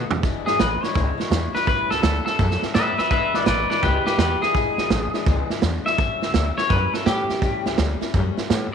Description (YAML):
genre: rockabilly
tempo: 167 BPM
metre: 4/4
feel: swing 65% on 8ths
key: E mixolydian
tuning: A4 = 438 Hz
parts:
  - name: twangy electric guitar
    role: melody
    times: 0.0-7.8 s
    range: G4 to E5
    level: -22 LUFS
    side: left 2 dB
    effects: spring reverb, tape echo
  - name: picked steel-string acoustic guitar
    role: accompaniment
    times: 0.0-8.7 s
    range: E2 to F#4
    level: -30 LUFS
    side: left 14 dB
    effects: none
  - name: upright bass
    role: bass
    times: 0.0-8.7 s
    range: E1 to A2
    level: -25 LUFS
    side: left 1 dB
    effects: none
  - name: vintage drum kit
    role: drums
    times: 0.1-8.6 s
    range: hi-hat, kick drum, snare drum, toms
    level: -23 LUFS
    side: right 4 dB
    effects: none
room: light reverb, studio ambience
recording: 1960s-style stereo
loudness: -19 LUFS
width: side -7 dB against mid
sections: 0.2-8.7 A section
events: drum fill 0.0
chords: 0.2 E7; 1.7 A7; 3.1 E7; 6.0 A7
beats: | 0.23 0.59 0.95 1.31 | 1.67 2.03 2.39 2.75 | 3.11 3.47 3.83 4.19 | 4.55 4.91 5.27 5.63 | 5.99 6.35 6.71 7.07 | 7.42 7.78 8.14 8.50